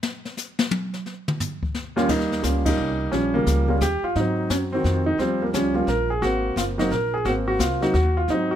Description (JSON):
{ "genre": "jazz piano trio", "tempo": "174 BPM", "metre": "3/4", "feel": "swing 65% on 8ths", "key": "unclear", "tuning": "A4 = 444 Hz", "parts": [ { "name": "jazz brush drum kit", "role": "drums", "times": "0.0-8.6 s", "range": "brushed snare drum, crash cymbal, hi-hat, kick drum, snare drum, toms", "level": "-27 LUFS", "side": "left 3 dB", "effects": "none" }, { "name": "warm grand piano", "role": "melody", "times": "2.0-8.6 s", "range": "Eb2 to Bb4", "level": "-21 LUFS", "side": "right 1 dB", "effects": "none" }, { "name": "upright bass", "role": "bass", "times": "2.1-8.6 s", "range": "Gb1 to Ab2", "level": "-26 LUFS", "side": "equal", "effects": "none" } ], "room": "little or no reverb", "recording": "close, detailed microphones", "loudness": "-20 LUFS", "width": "side -10 dB against mid", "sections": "0.0-2.1 A section; 2.1-8.6 B section", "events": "grand piano solo 0.0-2.1; drum solo 0.0-2.1; band accent 2.6", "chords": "0.0 N.C.; 1.7 Bb5; 2.1 Eb9; 4.2 Ab7; 5.2 Eb9; 6.2 Ab9" }